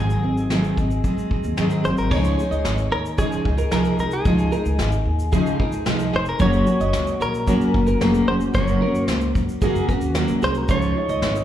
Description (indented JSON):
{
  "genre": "acoustic pop",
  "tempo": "112 BPM",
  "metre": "4/4",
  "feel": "straight",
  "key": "Db major",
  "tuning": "A4 = 442 Hz",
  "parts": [
    { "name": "direct-recorded clean electric guitar", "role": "melody", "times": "0.0-11.4 s", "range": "Ab4 to Db5", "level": "-26 LUFS", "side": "equal", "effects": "slapback echo" },
    { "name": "fingerpicked steel-string acoustic guitar", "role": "accompaniment", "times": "0.0-11.4 s", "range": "Gb2 to Ab4", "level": "-22 LUFS", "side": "equal", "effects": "double-tracked left and right, slapback echo" },
    { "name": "upright bass", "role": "bass", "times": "0.0-11.4 s", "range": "F1 to Ab2", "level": "-24 LUFS", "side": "equal", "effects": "none" },
    { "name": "soft brush drum kit", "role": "drums", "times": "0.1-11.4 s", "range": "crash cymbal, kick drum, shaker, snare drum", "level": "-25 LUFS", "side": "equal", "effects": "none" },
    { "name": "twelve-string electric guitar", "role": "arpeggios", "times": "2.1-11.4 s", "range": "Ab4 to Eb5", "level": "-31 LUFS", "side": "right 6 dB", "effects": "lush chorus, slapback echo, tape echo" }
  ],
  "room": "light reverb",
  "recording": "live gig heard through the venue's PA, club reverb",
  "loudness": "-18 LUFS",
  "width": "side -11 dB against mid",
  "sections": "0.0-2.1 A section; 2.1-11.4 B section",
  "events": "none",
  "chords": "0.0 Ab7; 2.1 Dbadd9; 6.4 Gb; 10.7 Dbadd9"
}